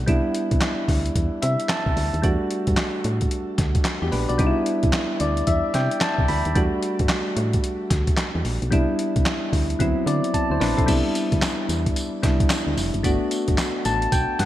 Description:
R&B, new jack swing; 111 BPM; 4/4; swing 63% on 16ths; A4 = 440 Hz
soft electric-piano-like synth keys; accompaniment; 0.0-14.5 s; F#3 to B5; -23 LUFS; equal; chorus, shimmer reverb
solid FM bass; bass; 0.0-14.5 s; F1 to D3; -24 LUFS; equal
boom bap sampler-style drum kit; drums; 0.1-14.5 s; crash cymbal, handclaps, hi-hat, kick drum, snare drum, tambourine; -23 LUFS; equal; gated reverb
moderate plate reverb, RT60 2.1 s; bright 1980s-style digital production; -20 LUFS; side -13 dB against mid
0.0-10.9 A section; 10.9-14.5 B section
synth keys fill 1.2-2.2, 4.9-6.6, 9.8-10.9, 13.6-14.5; drum fill 10.3-10.9
0.1 Cmaj7; 2.2 Em11 (rootless); 4.4 Cmaj7; 6.6 Em11 (rootless); 8.7 Cmaj7; 9.8 D13; 10.9 Cmaj7; 13.0 Gmaj7

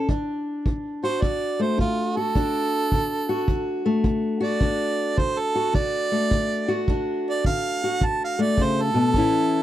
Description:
acoustic country blues, solo or duo; 106 BPM; 4/4; swing 65% on 8ths; D major; A4 = 439 Hz
fingerpicked steel-string acoustic guitar; accompaniment; 0.0-9.6 s; A2 to F#4; -24 LUFS; left 2 dB
kick drum; drums; 0.1-9.3 s; -24 LUFS; equal
bright harmonica; melody; 1.0-9.6 s; F4 to A5; -24 LUFS; right 4 dB
light reverb; dry, close 1970s-style studio recording; -21 LUFS; side -12 dB against mid
0.1-9.6 A section
harmonica solo 0.1-9.6
0.1 D

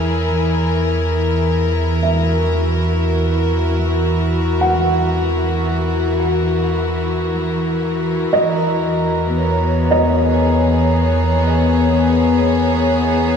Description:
ambient; free time; E lydian; A4 = 440 Hz
rich chamber string section; sustained chords; 0.0-13.4 s; E3 to C#5; -17 LUFS; left 2 dB
felt-muted upright piano; arpeggios; 0.0-13.4 s; D#5 to F#5; -23 LUFS; right 2 dB; tape echo, shimmer reverb
warm sub bass; bass; 0.0-13.4 s; E2; -20 LUFS; right 1 dB
glass harmonica; texture; 8.3-13.4 s; A#4 to A#5; -24 LUFS; right 5 dB; stereo widening, shimmer reverb
wet concert hall reverb, RT60 2.4 s; dark, warm production; -14 LUFS; side -6 dB against mid
0.0-8.3 A section; 8.3-13.4 B section
0.0 F#7/E; 8.3 E6

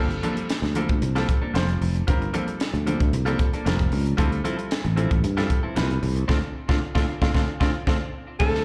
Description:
electric jazz fusion; 114 BPM; 4/4; straight; A4 = 441 Hz
bright baby grand piano; accompaniment; 0.0-8.6 s; G3 to C5; -32 LUFS; equal; slapback echo
clean electric guitar; stabs; 0.0-8.6 s; F3 to A4; -33 LUFS; equal; lush chorus, slapback echo, tape echo
sustaining fretless electric bass; bass; 0.0-8.6 s; F1 to G2; -27 LUFS; equal
crisp fusion drum kit; drums; 0.1-8.6 s; crash cymbal, hi-hat, kick drum, snare drum; -27 LUFS; equal
bright alto saxophone; melody; 8.4-8.6 s; A4; -25 LUFS; equal
little or no reverb; live gig heard through the venue's PA, club reverb; -24 LUFS; mono
0.0-8.4 A section
band accent 6.3-8.4; drum fill 7.9-8.4
0.0 Gm9; 4.2 Dm9

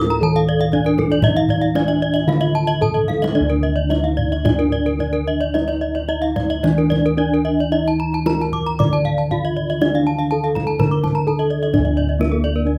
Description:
Balinese gamelan; 110-130 BPM; 4/4; straight; D pelog; A4 = 440 Hz
gamelan-type bronze metallophone; melody; 0.0-12.8 s; Bb3 to D5; -24 LUFS; equal
gamelan-type bronze metallophone; arpeggios; 0.0-12.8 s; A4 to Eb6+35c; -27 LUFS; equal
gamelan-type bossed gongs; bass; 0.0-12.8 s; D2 to A4; -23 LUFS; equal
gamelan-type bronze metallophone; arpeggios; 0.1-12.6 s; A4 to D6; -28 LUFS; equal
kendang; percussion; 0.1-12.6 s; -26 LUFS; equal
little or no reverb; close, detailed microphones; -18 LUFS; mono
0.0-3.4 A section; 3.4-11.7 B section; 11.7-12.8 C section
drum fill 3.0-3.4

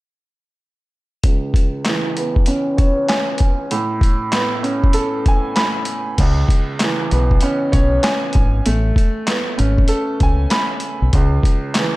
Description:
hip hop, boom-bap hip-hop; 97 BPM; 4/4; swing 60% on 16ths; C# minor; A4 = 440 Hz
warm baby grand piano; accompaniment; 1.2-12.0 s; C#2 to B5; -20 LUFS; right 1 dB; cassette tape, high-pass filter, low-pass filter
boom bap sampler-style drum kit; drums; 1.2-11.9 s; crash cymbal, handclaps, hi-hat, kick drum, snare drum; -17 LUFS; equal
deep dub fingered electric bass; bass; 6.2-11.4 s; G#1 to C#2; -17 LUFS; equal
little or no reverb; -15 LUFS; side -19 dB against mid
1.2-6.2 A section; 6.2-12.0 B section
filter sweep on grand piano 1.2-6.2
1.2 C#m7; 3.7 Amaj9; 6.2 C#m7; 8.7 Amaj9; 11.1 C#m

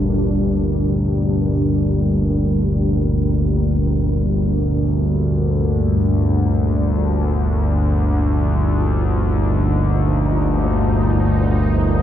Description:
dark ambient drone; free time; G minor; A4 = 440 Hz
sweeping resonant pad; sustained chords; 0.0-12.0 s; Bb2 to Bb4; -22 LUFS; equal; chorus
analog drone; drone; 0.0-12.0 s; G1 to D2; -16 LUFS; equal; chorus
moderate huge ambient reverb, RT60 8.1 s; -16 LUFS; side -11 dB against mid
0.0-12.0 A section
0.0 Gm; 7.5 Ebsus2/G

